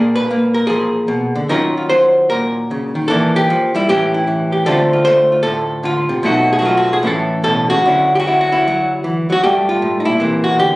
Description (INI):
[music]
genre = solo jazz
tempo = 151 BPM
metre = 4/4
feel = swing 65% on 8ths, rubato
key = unclear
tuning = A4 = 440 Hz
[part]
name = archtop guitar, miked and amplified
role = solo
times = 0.0-10.8 s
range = G2 to C5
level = -12 LUFS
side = equal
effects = none
[sound]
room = moderate small room reverb, RT60 0.6 s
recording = recorded on a phone in the room, studio reverb, nothing above 10.7 kHz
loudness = -13 LUFS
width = side -20 dB against mid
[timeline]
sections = 0.0-7.8 A section; 7.8-10.8 B section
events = none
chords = 0.0 Bb7b9; 1.5 Ebm9; 3.1 Em7b5; 3.9 A7; 4.7 Dm7; 6.2 B7#11; 7.0 Aadd9; 7.8 Dmaj9; 9.4 Gm9; 10.2 C9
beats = 0.29 0.69 1.10 | 1.50 1.90 2.30 2.70 | 3.09 3.49 3.88 4.28 | 4.67 5.06 5.45 5.84 | 6.23 6.63 7.03 7.44 | 7.85 8.25 8.65 9.04 | 9.43 9.82 10.21 10.61